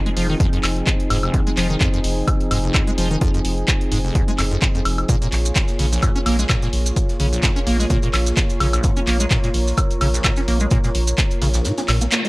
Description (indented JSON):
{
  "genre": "acid house",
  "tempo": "128 BPM",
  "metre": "4/4",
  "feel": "swing 55% on 16ths",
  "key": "unclear",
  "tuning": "A4 = 440 Hz",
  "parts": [
    { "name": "warm analog pad", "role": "sustained chords", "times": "0.0-12.3 s", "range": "F3 to Db5", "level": "-26 LUFS", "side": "equal", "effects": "chorus, sidechain pumping" },
    { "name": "acid bass, square", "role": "riff", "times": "0.1-12.3 s", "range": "F1 to Db4", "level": "-24 LUFS", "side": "equal", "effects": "lush chorus, tape echo" },
    { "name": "punchy analog drum machine", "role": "drums", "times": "0.1-12.3 s", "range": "handclaps, hi-hat, woodblock", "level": "-24 LUFS", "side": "equal", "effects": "none" },
    { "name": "round analog bass", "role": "bass", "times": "0.2-12.1 s", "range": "F1 to Bb1", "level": "-20 LUFS", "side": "equal", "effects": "sidechain pumping" },
    { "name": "electronic kick drum", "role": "drums", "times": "0.4-11.3 s", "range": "none", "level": "-20 LUFS", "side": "equal", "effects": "none" },
    { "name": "warm soul drum kit", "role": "drums", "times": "5.1-12.3 s", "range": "hi-hat, snare drum", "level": "-36 LUFS", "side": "left 1 dB", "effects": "none" },
    { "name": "maracas", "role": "percussion", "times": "5.1-12.3 s", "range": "none", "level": "-28 LUFS", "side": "right 3 dB", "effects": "none" }
  ],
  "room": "small room ambience",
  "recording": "dry, gritty hardware recording",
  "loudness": "-16 LUFS",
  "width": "side -22 dB against mid",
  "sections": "0.0-12.3 A section",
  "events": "kick drops out 11.7-12.3; band accent 12.1",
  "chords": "0.0 Fm7; 5.1 Bbm7",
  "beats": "0.40 0.87 | 1.34 1.81 2.28 2.74 | 3.21 3.68 4.15 4.62 | 5.09 5.56 6.03 6.49 | 6.96 7.43 7.90 8.37 | 8.84 9.31 9.78 10.24 | 10.71 11.18 11.65 12.12"
}